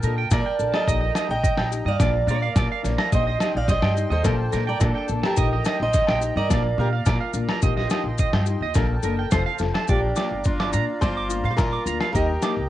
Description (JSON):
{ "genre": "highlife guitar band", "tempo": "106 BPM", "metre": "4/4", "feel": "straight", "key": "Bb major", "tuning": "A4 = 440 Hz", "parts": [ { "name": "nylon-string guitar", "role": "accompaniment", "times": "0.0-12.6 s", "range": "Eb3 to A4", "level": "-30 LUFS", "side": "left 10 dB", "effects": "cassette tape" }, { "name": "accordion", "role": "sustained chords", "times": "0.0-12.7 s", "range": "Bb3 to C6", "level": "-35 LUFS", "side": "right 1 dB", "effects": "light tremolo tuning, cassette tape" }, { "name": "electric guitar at the edge of break-up", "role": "arpeggios", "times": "0.0-12.5 s", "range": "Bb4 to D6", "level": "-29 LUFS", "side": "right 7 dB", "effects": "cassette tape, tape echo" }, { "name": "upright bass", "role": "bass", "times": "0.0-12.7 s", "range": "F1 to Bb2", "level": "-25 LUFS", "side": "equal", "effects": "none" }, { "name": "maracas", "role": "percussion", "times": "0.0-12.6 s", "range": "none", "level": "-36 LUFS", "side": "left 12 dB", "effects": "none" }, { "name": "fingerpicked steel-string acoustic guitar", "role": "melody", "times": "0.3-12.7 s", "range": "D4 to G5", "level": "-27 LUFS", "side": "right 2 dB", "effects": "none" }, { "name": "lo-fi sampler-style drum kit", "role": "drums", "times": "0.3-12.6 s", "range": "kick drum, snare drum", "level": "-24 LUFS", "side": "equal", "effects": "cassette tape" }, { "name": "agogo bells", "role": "percussion", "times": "0.3-12.6 s", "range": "none", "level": "-36 LUFS", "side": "left 10 dB", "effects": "none" } ], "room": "moderate small room reverb, RT60 0.5 s", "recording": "home recording on cassette, nothing above 10.4 kHz", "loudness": "-20 LUFS", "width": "side -13 dB against mid", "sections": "0.0-9.9 A section; 9.9-12.7 B section", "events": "none", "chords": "0.0 Gmadd9/Bb; 0.9 Eb/Bb; 2.0 Bb; 3.1 Cm/Bb; 4.3 Gmadd9/Bb; 5.4 Eb/Bb; 6.5 Bb; 7.6 Cm/Bb; 8.8 Gmadd9/Bb; 9.3 F; 9.9 Bb; 12.2 Eb" }